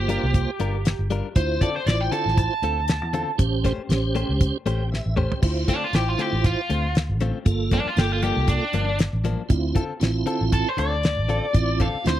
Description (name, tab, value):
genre	straight-eighth soul blues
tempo	118 BPM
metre	4/4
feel	swing 56% on 16ths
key	D minor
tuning	A4 = 440 Hz
part	biting overdriven guitar	melody	0.0-12.2 s	D4 to A5	-26 LUFS	equal	spring reverb
part	tonewheel organ	accompaniment	0.0-12.2 s	Bb3 to G5	-27 LUFS	right 6 dB	slow rotary speaker, overdrive, chorus vibrato
part	vintage muted fingered electric bass	bass	0.0-12.2 s	G1 to E2	-25 LUFS	equal	none
part	direct-recorded clean electric guitar	stabs	0.1-12.0 s	G2 to B#4	-30 LUFS	left 5 dB	spring reverb
part	damped 70s drum kit	drums	0.1-12.2 s	crash cymbal, hi-hat, kick drum, snare drum, toms	-22 LUFS	equal	none
room	little or no reverb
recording	dry, close 1970s-style studio recording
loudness	-20 LUFS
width	side -12 dB against mid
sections	0.0-5.4 A section; 5.4-12.2 B section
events	tonewheel organ fill 4.4-5.4; drum fill 4.9-5.4; overdriven electric guitar solo 5.4-12.2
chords	0.0 Gm7; 1.4 Dm7; 3.4 A7#9; 5.4 Dm7; 7.5 Gm7; 9.5 Dm7